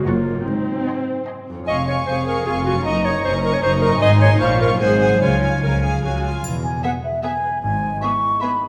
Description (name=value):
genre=cinematic, playful, whimsical film cue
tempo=152 BPM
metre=3/4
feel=straight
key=Db major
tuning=A4 = 440 Hz
part: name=warm clarinet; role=second line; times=0.0-6.0 s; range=Eb4 to Eb5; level=-23 LUFS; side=equal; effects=none
part: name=dark studio viola section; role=accompaniment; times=0.0-8.5 s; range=Bb3 to Bb4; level=-29 LUFS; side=equal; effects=none
part: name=concert harp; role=arpeggios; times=0.0-8.7 s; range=F2 to G#5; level=-29 LUFS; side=equal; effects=none
part: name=warm studio violin section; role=melody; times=0.1-8.5 s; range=E5 to Db6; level=-31 LUFS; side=equal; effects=none
part: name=rich studio violin section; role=second line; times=0.1-8.5 s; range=G#4 to Bb5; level=-30 LUFS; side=equal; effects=none
part: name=rich studio double bass section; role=bass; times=0.1-8.0 s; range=E1 to Db2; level=-26 LUFS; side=equal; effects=none
part: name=warm studio cello section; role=bass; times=0.1-8.0 s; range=E2 to Db3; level=-27 LUFS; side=equal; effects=none
part: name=triangle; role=percussion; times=6.4-7.2 s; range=none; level=-38 LUFS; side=equal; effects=none
part: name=mellow hollow silver concert flute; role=second line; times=6.6-8.7 s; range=E5 to C#6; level=-23 LUFS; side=equal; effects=none
room=wet recital hall reverb, RT60 1.6 s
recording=none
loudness=-19 LUFS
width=mono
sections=0.0-6.4 A section; 6.4-8.7 B section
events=none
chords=0.1 Gbmaj7; 0.5 Ab; 1.7 Db/F; 2.9 Ebm7/Gb; 4.0 Ab; 4.4 Bbm; 4.8 Ab7; 5.2 Db; 6.4 E; 7.6 E/G#